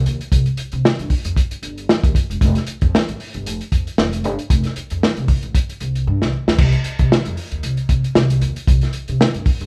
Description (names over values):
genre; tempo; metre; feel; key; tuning
funk; 115 BPM; 4/4; swing 56% on 16ths; unclear; A4 = 440 Hz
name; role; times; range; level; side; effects
upright bass; bass; 0.0-9.7 s; E1 to C3; -23 LUFS; equal; none
warm soul drum kit; drums; 0.1-9.7 s; crash cymbal, hi-hat, kick drum, snare drum; -19 LUFS; equal; none
room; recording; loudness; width
light reverb; band playing live in one room; -18 LUFS; mono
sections
0.0-6.6 A section; 6.6-9.7 B section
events
drum fill 6.1-6.6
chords
none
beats
| 0.32 0.84 1.36 1.89 | 2.41 2.93 3.46 3.98 | 4.50 5.02 5.54 6.07 | 6.59 7.11 7.63 8.16 | 8.68 9.20